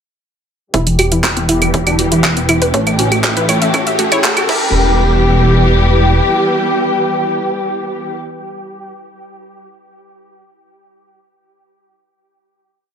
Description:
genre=melodic techno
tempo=120 BPM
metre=4/4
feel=straight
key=E dorian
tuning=A4 = 438 Hz
part: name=wide unison lead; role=melody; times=0.7-8.2 s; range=E3 to G4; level=-19 LUFS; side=equal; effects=sidechain pumping, tape echo
part: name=dark studio string section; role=sustained chords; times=0.7-8.2 s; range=E3 to G4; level=-20 LUFS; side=left 2 dB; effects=sidechain pumping, low-pass filter
part: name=analog pluck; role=arpeggios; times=0.7-5.0 s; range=B3 to E5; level=-19 LUFS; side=equal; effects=chorus, cassette tape, sidechain pumping, ping-pong delay
part: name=dark detuned saw bass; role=bass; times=0.7-6.2 s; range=E1 to A1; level=-16 LUFS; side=equal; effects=sidechain pumping
part: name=electronic kick drum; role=drums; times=0.7-4.6 s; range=none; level=-20 LUFS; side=equal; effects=high-pass filter on kick, high-pass filter on room
part: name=house drum kit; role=drums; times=0.7-4.6 s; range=claves, crash cymbal, handclaps, hi-hat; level=-17 LUFS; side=right 2 dB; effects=sidechain pumping on hats, sidechain pumping on perc, sidechain pumping on cymbals
part: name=riser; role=sound effects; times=1.8-4.7 s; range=none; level=-22 LUFS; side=equal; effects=none
part: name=ethereal airy pad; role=texture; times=1.5-8.6 s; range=C#4 to G5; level=-21 LUFS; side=equal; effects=ensemble chorus, built-in reverb, sidechain pumping
room=light reverb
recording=high-pass filter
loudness=-11 LUFS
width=side -8 dB against mid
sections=0.7-4.7 build; 4.7-8.7 final note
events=build-up 0.7-4.7; filter sweep on synth arpeggio sound 0.7-4.7; filter sweep on analog synth lead 0.7-4.7; filter sweep on string section 0.7-4.7; riser 1.8-4.7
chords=0.7 Em; 2.7 A7; 4.5 Em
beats=| 0.74 1.24 1.74 2.24 | 2.74 3.24 3.74 4.24 | 4.74 5.24 5.74 6.24 | 6.74 7.24 7.74 8.24

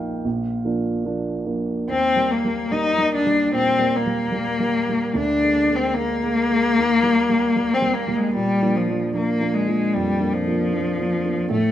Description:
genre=classical, romantic duo for cello and grand piano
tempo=75 BPM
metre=4/4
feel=rubato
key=Eb major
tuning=A4 = 441 Hz
part: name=dark grand piano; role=accompaniment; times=0.0-11.7 s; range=Bb1 to G5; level=-24 LUFS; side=right 3 dB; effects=none
part: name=rich cello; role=melody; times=1.9-11.7 s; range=F3 to Eb4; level=-19 LUFS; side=left 3 dB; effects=none
room=light reverb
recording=close, detailed microphones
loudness=-18 LUFS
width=side -11 dB against mid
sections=0.0-1.9 A section; 1.9-11.7 B section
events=none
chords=0.2 Bb; 1.9 Eb; 5.2 Bb7/D; 6.8 Eb; 8.4 Bb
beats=0.24 1.06 | 1.89 2.71 3.53 4.34 | 5.16 5.96 6.76 7.56 | 8.35 9.14 9.93 10.71 | 11.50

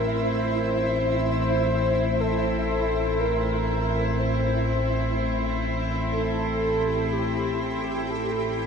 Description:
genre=dark ambient drone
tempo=free time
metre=none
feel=none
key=A phrygian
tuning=A4 = 443 Hz
part: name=mellow horn-like synth lead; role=melody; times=0.0-8.7 s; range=G4 to C5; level=-27 LUFS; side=equal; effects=chorus, tape echo
part: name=clear studio cello section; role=sustained chords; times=0.0-8.7 s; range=C4 to C5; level=-30 LUFS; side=equal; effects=none
part: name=analog drone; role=drone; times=0.0-8.7 s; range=A1 to A2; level=-27 LUFS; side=equal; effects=chorus
part: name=flickering grainy texture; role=texture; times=0.0-8.7 s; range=E4 to E5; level=-32 LUFS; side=equal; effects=built-in reverb
room=wet huge ambient reverb, RT60 7.7 s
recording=none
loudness=-22 LUFS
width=side -6 dB against mid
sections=0.0-8.7 A section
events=none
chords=0.0 Am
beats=free time

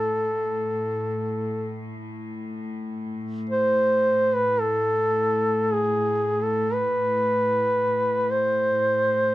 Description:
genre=caucasian folk, Caucasian lament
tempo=free time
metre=none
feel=none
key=A harmonic minor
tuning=A4 = 440 Hz
part: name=mellow duduk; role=melody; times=0.0-9.3 s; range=G#4 to C5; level=-21 LUFS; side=equal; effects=none
part: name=clear studio cello section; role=drone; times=0.0-9.3 s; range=A2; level=-30 LUFS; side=equal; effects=none
room=moderate studio reverb, RT60 0.5 s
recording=none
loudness=-21 LUFS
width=side -16 dB against mid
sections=0.0-9.3 A section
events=none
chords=none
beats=free time

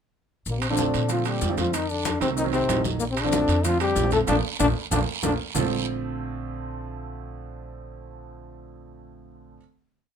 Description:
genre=Afro-Cuban jazz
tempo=188 BPM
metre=4/4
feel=straight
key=Bb major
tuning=A4 = 441 Hz
part: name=mellow trombone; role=melody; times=0.5-5.3 s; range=Bb3 to A4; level=-25 LUFS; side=left 3 dB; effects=none
part: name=breathy trombone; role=second line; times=0.5-5.3 s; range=Bb2 to A3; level=-31 LUFS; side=left 5 dB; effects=none
part: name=upright bass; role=bass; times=0.5-9.6 s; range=Bb1 to Bb2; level=-30 LUFS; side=equal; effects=none
part: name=congas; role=percussion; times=0.5-5.6 s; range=none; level=-32 LUFS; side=left 1 dB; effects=none
part: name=guiro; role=percussion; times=0.5-5.6 s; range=none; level=-35 LUFS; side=right 7 dB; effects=none
part: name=maracas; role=percussion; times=0.5-5.6 s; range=none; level=-34 LUFS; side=left 8 dB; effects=none
part: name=timbales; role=percussion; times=0.6-5.6 s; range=none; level=-32 LUFS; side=right 6 dB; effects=none
part: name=warm concert grand piano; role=accompaniment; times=0.7-9.6 s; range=D3 to Eb4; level=-30 LUFS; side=right 6 dB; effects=none
room=moderate studio ambience, RT60 0.5 s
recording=minimal, uncompressed stereo recording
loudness=-22 LUFS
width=side -7 dB against mid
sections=0.5-5.6 A section; 5.6-8.1 final chord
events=drum fill 4.3-5.6; band accent 4.3-5.6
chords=0.5 Bbmaj7; 1.7 F7b9; 3.0 Bbmaj7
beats=| 0.46 0.78 1.10 1.42 | 1.73 2.05 2.37 2.69 | 3.01 3.33 3.65 3.96 | 4.28 4.60 4.92 5.24 | 5.56 5.88 6.19 6.51 | 6.83 7.15 7.47 7.79

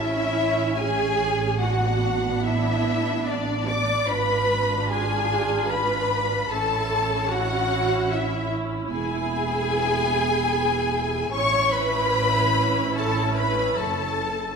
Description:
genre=classical, slow romantic movement for string orchestra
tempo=74 BPM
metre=3/4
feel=rubato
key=A major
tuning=A4 = 440 Hz
part: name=clear studio violin section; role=melody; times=0.0-14.6 s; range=D5 to D6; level=-29 LUFS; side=left 6 dB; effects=none
part: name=warm studio violin section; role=second line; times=0.0-14.6 s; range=D5 to D6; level=-27 LUFS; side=left 4 dB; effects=none
part: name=warm studio viola section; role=accompaniment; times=0.0-14.6 s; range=B3 to E#4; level=-29 LUFS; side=right 3 dB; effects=none
part: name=dark studio cello section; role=bass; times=0.0-14.6 s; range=D4 to D5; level=-26 LUFS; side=right 2 dB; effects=none
part: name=warm studio double bass section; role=bass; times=0.0-14.6 s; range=E1 to A1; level=-28 LUFS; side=right 3 dB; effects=none
room=wet concert hall reverb, RT60 1.9 s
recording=minimal, uncompressed stereo recording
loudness=-21 LUFS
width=side -5 dB against mid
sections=0.0-14.6 A section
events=none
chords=0.0 A; 1.6 Bm7/A; 4.1 G#dim7; 6.5 A; 8.9 E; 11.3 A; 13.8 F#m7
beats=0.76 | 1.59 2.43 3.26 | 4.08 4.89 5.70 | 6.50 7.30 8.11 | 8.91 9.70 10.51 | 11.32 12.14 12.95 | 13.76

